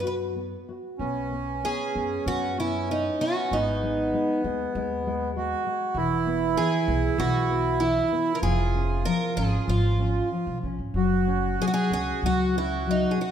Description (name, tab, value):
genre	fado-style ballad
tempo	96 BPM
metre	4/4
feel	rubato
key	B major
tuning	A4 = 440 Hz
part	picked twelve-string acoustic guitar	melody	0.0-13.3 s	D#4 to B4	-28 LUFS	equal	none
part	nylon-string guitar	accompaniment	0.0-13.3 s	E3 to F#4	-29 LUFS	left 3 dB	none
part	upright bass	bass	0.0-13.0 s	E1 to F#2	-29 LUFS	equal	none
part	accordion	second line	1.0-13.3 s	B3 to F#4	-28 LUFS	right 4 dB	none
room	moderate scoring stage reverb, RT60 1.6 s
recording	minimal, uncompressed stereo recording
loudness	-23 LUFS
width	side -9 dB against mid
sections	1.0-13.3 A section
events	none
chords	0.0 B5; 3.5 G#m; 6.0 E; 8.4 C#/E#; 10.9 F#5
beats	0.34 | 1.00 1.64 2.27 2.89 | 3.52 4.14 4.75 5.36 | 5.95 6.56 7.18 7.80 | 8.42 9.05 9.68 10.31 | 10.95 11.59 12.23 12.86